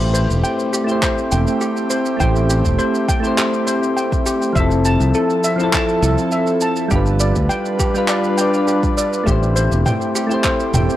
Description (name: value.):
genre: sunset chillout.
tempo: 102 BPM.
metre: 4/4.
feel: straight.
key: A minor.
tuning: A4 = 441 Hz.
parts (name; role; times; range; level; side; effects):
soft electric-piano-like synth keys; accompaniment; 0.0-11.0 s; F3 to D5; -20 LUFS; moving between left 3 dB and right 3 dB; chorus, tremolo, auto-pan, vintage 12-bit sampler grit, low-pass filter, tape echo.
airy breathy pad; sustained chords; 0.0-11.0 s; F3 to B4; -22 LUFS; equal; chorus.
modern bright fingered electric bass; bass; 0.0-10.9 s; E1 to D2; -17 LUFS; equal; none.
deep house drum kit; drums; 0.0-11.0 s; handclaps, shaker, toms; -23 LUFS; right 1 dB; none.
steel pan; arpeggios; 0.1-10.9 s; G4 to A5; -23 LUFS; equal; tape echo.
electronic kick drum; drums; 1.0-10.6 s; none; -21 LUFS; equal; none.
room: light reverb.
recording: dry, gritty hardware recording.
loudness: -15 LUFS.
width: side -13 dB against mid.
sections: 0.0-11.0 A section.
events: none.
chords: 0.0 Am7; 4.6 Fmaj7; 6.9 G7; 9.3 Am7.